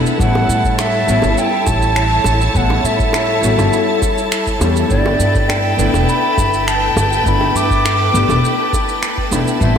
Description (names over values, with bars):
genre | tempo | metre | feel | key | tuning
sunset chillout | 102 BPM | 4/4 | straight | G major | A4 = 440 Hz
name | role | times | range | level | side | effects
hollow-body jazz guitar | accompaniment | 0.0-9.8 s | G3 to G4 | -20 LUFS | moving between left 5 dB and right 1 dB | auto-pan, tape echo
clear studio string section | sustained chords | 0.0-9.8 s | E4 to A5 | -20 LUFS | equal | none
drifting glass-harmonics texture | texture | 0.0-9.8 s | A5 to A6 | -27 LUFS | right 1 dB | chorus, built-in reverb
electronic shaker and finger snaps | drums | 0.1-9.7 s | none | -25 LUFS | right 2 dB | none
concert flute | melody | 0.2-9.8 s | D5 to D6 | -19 LUFS | equal | tape echo
upright bass | bass | 0.2-9.8 s | E1 to A2 | -18 LUFS | equal | tube saturation
electronic kick drum | drums | 0.2-9.7 s | none | -20 LUFS | equal | overdrive
bongos | percussion | 0.4-9.8 s | none | -27 LUFS | right 2 dB | none
room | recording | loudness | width
wet lush hall reverb, RT60 3.0 s | dreamy mix soaked in reverb | -12 LUFS | side -8 dB against mid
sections
0.0-9.8 A section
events
none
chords
0.2 A7; 4.9 G69